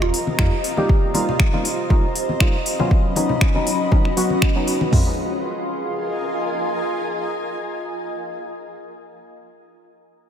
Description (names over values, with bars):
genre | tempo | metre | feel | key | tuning
deep house | 119 BPM | 4/4 | swing 54% on 16ths | F minor | A4 = 440 Hz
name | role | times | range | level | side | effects
mallet-like synth pluck | melody | 0.0-0.8 s | F4 | -28 LUFS | right 8 dB | chorus, phaser, ping-pong delay
warbly tape-like pad | sustained chords | 0.0-8.7 s | Gb3 to C6 | -28 LUFS | equal | chorus, built-in reverb, sidechain pumping
percussive organ stab | stabs | 0.0-8.7 s | F3 to G4 | -24 LUFS | equal | lush chorus, sidechain pumping, ping-pong delay
sub bass with octave | bass | 0.0-0.5 s | Eb1 to F2 | -23 LUFS | equal | sidechain pumping
deep house drum kit | drums | 0.0-4.8 s | finger snaps, hi-hat | -24 LUFS | left 1 dB | none
granular cloud pad | texture | 0.0-9.0 s | C4 to Ab5 | -27 LUFS | equal | built-in reverb, sidechain pumping
congas | percussion | 0.3-4.9 s | none | -29 LUFS | left 3 dB | none
deep house drum kit | drums | 0.4-5.1 s | hi-hat, kick drum, toms | -17 LUFS | equal | none
room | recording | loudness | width
moderate lush hall reverb, RT60 1.9 s, digital ambience | dreamy mix soaked in reverb | -18 LUFS | side -9 dB against mid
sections
0.0-4.9 A section; 4.9-9.0 B section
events
filter sweep on synth stab 0.0-4.9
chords
0.0 F9sus4; 2.7 Db9sus4; 4.9 Fm